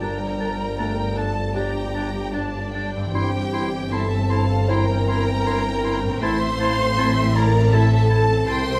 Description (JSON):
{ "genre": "cinematic", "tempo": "78 BPM", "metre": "4/4", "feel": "rubato", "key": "unclear", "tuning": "A4 = 440 Hz", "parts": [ { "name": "rich studio violin section", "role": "melody", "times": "0.0-8.8 s", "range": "D5 to Bb5", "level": "-37 LUFS", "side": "equal", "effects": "none" }, { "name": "bright clarinet", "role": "second line", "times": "0.0-8.6 s", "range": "D4 to E4", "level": "-34 LUFS", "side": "equal", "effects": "none" }, { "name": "clear oboe", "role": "second line", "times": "0.0-8.6 s", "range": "A5 to C6", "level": "-35 LUFS", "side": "equal", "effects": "none" }, { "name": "silver concert flute", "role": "second line", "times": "0.0-8.8 s", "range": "D5 to C6", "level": "-32 LUFS", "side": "equal", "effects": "none" }, { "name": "warm symphonic violin section", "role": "second line", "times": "0.0-8.8 s", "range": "D5 to C6", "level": "-34 LUFS", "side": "equal", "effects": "none" }, { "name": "dark symphonic viola section", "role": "accompaniment", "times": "0.0-8.8 s", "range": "D4 to C5", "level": "-30 LUFS", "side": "equal", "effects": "none" }, { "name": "felt-muted upright piano", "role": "accompaniment", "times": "0.0-8.8 s", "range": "G2 to D5", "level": "-33 LUFS", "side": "equal", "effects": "none" }, { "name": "warm French horn section", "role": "sustained chords", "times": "0.0-8.8 s", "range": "E3 to D4", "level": "-33 LUFS", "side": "equal", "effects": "none" }, { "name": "concert harp", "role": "arpeggios", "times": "0.0-8.8 s", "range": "G2 to D5", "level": "-37 LUFS", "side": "equal", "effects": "none" }, { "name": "rich symphonic double bass section", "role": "bass", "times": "0.0-8.8 s", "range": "G1 to C2", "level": "-27 LUFS", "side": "equal", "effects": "none" }, { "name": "warm symphonic cello section", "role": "bass", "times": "0.0-8.8 s", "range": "G2 to C3", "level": "-28 LUFS", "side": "equal", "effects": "none" } ], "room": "moderate recital hall reverb, RT60 1.5 s", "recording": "none", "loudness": "-21 LUFS", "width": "mono", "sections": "0.0-8.8 A section", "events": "none", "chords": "0.0 Gmadd9; 3.1 C/G; 6.2 Am", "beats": "| 0.03 0.80 1.57 2.35 | 3.15 3.93 4.70 5.47 | 6.23 6.98 7.74 8.49" }